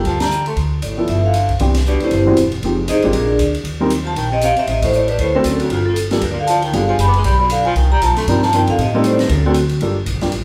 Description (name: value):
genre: jazz, small-group swing and bop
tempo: 234 BPM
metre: 4/4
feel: swing 59% on 8ths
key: G minor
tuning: A4 = 440 Hz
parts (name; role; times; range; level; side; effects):
- vibraphone with medium hard mallets; melody; 0.0-9.5 s; C4 to D6; -20 LUFS; equal; none
- warm baritone saxophone; second line; 0.0-9.5 s; D2 to B3; -27 LUFS; equal; none
- warm upright piano; accompaniment; 0.0-10.3 s; E3 to Bb4; -22 LUFS; equal; none
- upright bass; bass; 0.0-10.4 s; E1 to A2; -21 LUFS; equal; none
- open jazz drum kit; drums; 0.0-10.4 s; hi-hat, kick drum, ride cymbal, snare drum; -30 LUFS; equal; none
room: wet large studio reverb, RT60 0.9 s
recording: band playing live in one room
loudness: -16 LUFS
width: mono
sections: 0.0-1.6 A section; 1.6-9.8 B section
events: band accent 0.2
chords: 0.0 Gm9; 0.6 Dm; 1.1 G13; 1.6 Cmaj9; 2.6 Fm9; 3.1 Bb7; 3.7 Eb5; 4.7 Adim; 5.2 D7; 5.7 G7sus2; 6.7 G7b9; 7.8 Cm11; 8.8 Am7b5; 9.3 D7; 9.8 Gm9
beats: 0.06 0.31 | 0.57 0.83 1.08 1.34 | 1.60 1.85 2.11 2.37 | 2.62 2.88 3.14 3.40 | 3.65 3.91 4.17 4.42 | 4.68 4.93 5.19 5.45 | 5.70 5.96 6.22 6.47 | 6.73 6.99 7.24 7.50 | 7.76 8.01 8.27 8.53 | 8.78 9.04 9.30 9.55 | 9.81 10.07 10.32